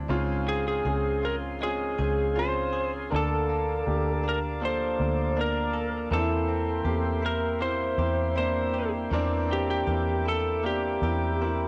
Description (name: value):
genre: pop ballad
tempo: 80 BPM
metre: 4/4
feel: straight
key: unclear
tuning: A4 = 441 Hz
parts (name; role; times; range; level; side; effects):
- clear baby grand piano; accompaniment; 0.0-11.7 s; Ab2 to Bb4; -33 LUFS; equal; none
- direct-recorded clean electric guitar; arpeggios; 0.0-11.7 s; Db3 to A4; -41 LUFS; equal; none
- vintage muted fingered electric bass; bass; 0.0-11.7 s; Db2 to E2; -32 LUFS; equal; none
- tonewheel organ; sustained chords; 0.1-11.7 s; Bb3 to D6; -38 LUFS; equal; slow rotary speaker
- lightly driven lead guitar; melody; 0.5-11.7 s; G4 to C5; -32 LUFS; equal; none
room: light reverb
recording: home recording on cassette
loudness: -27 LUFS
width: mono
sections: 0.1-11.7 A section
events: none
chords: 0.1 Dbmaj7; 3.1 Bbmaj7/D; 6.1 C7/E